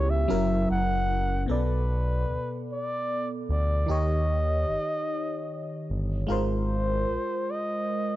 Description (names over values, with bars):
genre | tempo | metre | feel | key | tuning
R&B | 50 BPM (dotted quarters) | 6/8 | straight | unclear | A4 = 440 Hz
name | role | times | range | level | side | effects
mellow flugelhorn | melody | 0.0-8.2 s | B4 to F#5 | -30 LUFS | equal | none
FM electric piano | accompaniment | 0.0-8.2 s | B2 to D5 | -30 LUFS | equal | chorus, phaser
smooth synth bass | bass | 0.0-7.2 s | F#1 to D#2 | -27 LUFS | equal | none
room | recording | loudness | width
studio ambience | dry, gritty hardware recording, cassette tape, nothing above 7.8 kHz | -25 LUFS | side -15 dB against mid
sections
0.0-1.5 A section; 1.5-8.2 B section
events
flugelhorn solo 0.0-1.5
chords
0.3 F#7; 1.5 Bm7; 3.9 D#7; 6.3 G#69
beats
0.29 | 1.49 2.69 | 3.89 5.09 | 6.29 7.49